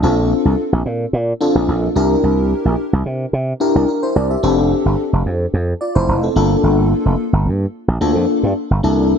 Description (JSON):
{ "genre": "early-eighties boogie funk", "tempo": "109 BPM", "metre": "4/4", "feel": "straight", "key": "G dorian", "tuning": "A4 = 440 Hz", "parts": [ { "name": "FM electric piano with soft pad layer", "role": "accompaniment", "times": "0.0-9.2 s", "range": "Bb3 to E5", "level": "-17 LUFS", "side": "left 2 dB", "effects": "chorus" }, { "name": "slap bass with an envelope filter", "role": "bass", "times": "0.0-9.1 s", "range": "F1 to C3", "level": "-16 LUFS", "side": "right 1 dB", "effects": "none" } ], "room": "moderate lush hall reverb, RT60 1.9 s", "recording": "dreamy mix soaked in reverb", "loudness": "-14 LUFS", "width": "side -7 dB against mid", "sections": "0.0-8.8 A section", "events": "none", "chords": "0.0 Bbmaj7; 2.0 C7; 4.4 F6; 6.4 Gm7", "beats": "| 0.03 0.58 1.13 1.68 | 2.23 2.78 3.33 3.88 | 4.43 4.98 5.54 6.08 | 6.63 7.19 7.74 8.29 | 8.84" }